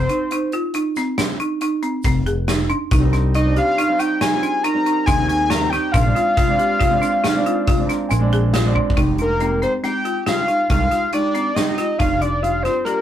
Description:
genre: progressive instrumental, band music in an uneven meter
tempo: 139 BPM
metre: 7/4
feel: straight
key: F dorian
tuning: A4 = 435 Hz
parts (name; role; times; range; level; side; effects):
- fat analog lead; melody; 0.0-13.0 s; Bb4 to Bb5; -20 LUFS; left 1 dB; none
- fretless electric bass; bass; 0.0-12.7 s; F1 to Eb2; -20 LUFS; equal; none
- folk marimba with hard mallets; arpeggios; 0.1-13.0 s; C4 to Ab4; -22 LUFS; right 1 dB; none
- gated 80s drum kit; drums; 0.1-13.0 s; hi-hat, kick drum, snare drum; -21 LUFS; equal; none
- tube shaker; percussion; 1.0-8.4 s; none; -42 LUFS; right 5 dB; none
- warm grand piano; accompaniment; 3.0-13.0 s; G3 to Bb5; -25 LUFS; right 2 dB; none
room: wet small room ambience, RT60 0.5 s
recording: rough rehearsal-room recording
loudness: -16 LUFS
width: side -10 dB against mid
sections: 0.0-9.0 A section; 9.0-13.0 B section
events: grand piano fill 7.7-9.0; drum fill 8.8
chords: 0.0 F7(no3); 2.9 Cm; 5.9 Bb7; 9.0 Fm7; 12.0 Ebmaj9/F (rootless)

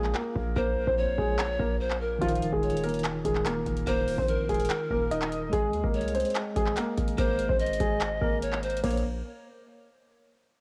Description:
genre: hip hop, trap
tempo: 145 BPM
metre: 4/4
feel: half-time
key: unclear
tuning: A4 = 442 Hz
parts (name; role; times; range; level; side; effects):
- dark grand piano; melody; 0.0-9.0 s; F3 to Eb5; -32 LUFS; equal; analog delay
- mellow tine electric piano; accompaniment; 0.0-9.0 s; Eb3 to F5; -37 LUFS; equal; none
- hard-hitting 808-style bass; bass; 0.0-9.2 s; Eb1 to Eb2; -36 LUFS; equal; none
- booming analog drum machine; drums; 0.0-9.0 s; crash cymbal, handclaps, hi-hat, kick drum; -34 LUFS; equal; cassette tape
- breathy bright pan flute; second line; 0.6-9.0 s; Bb4 to Eb5; -35 LUFS; equal; analog delay
room: light reverb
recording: home recording on cassette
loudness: -28 LUFS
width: mono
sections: 0.0-8.8 A section; 8.8-10.5 B section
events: break 0.0-2.2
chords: 0.0 Bbmadd9; 2.2 Ebsus2; 5.5 Ab; 8.8 N.C.

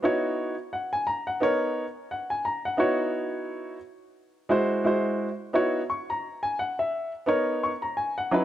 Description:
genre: hip hop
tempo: 87 BPM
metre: 4/4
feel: swing 58% on 16ths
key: C# dorian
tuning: A4 = 440 Hz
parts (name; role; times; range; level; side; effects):
- warm upright piano; solo; 0.0-8.4 s; F#3 to C#6; -25 LUFS; equal; none
room: light reverb, small room ambience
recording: dark, warm production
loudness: -25 LUFS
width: side -12 dB against mid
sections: 0.0-8.4 A section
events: none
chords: 0.0 C#m11; 1.4 Bmaj9; 2.8 C#m11; 4.2 G#7b13; 5.5 C#m11

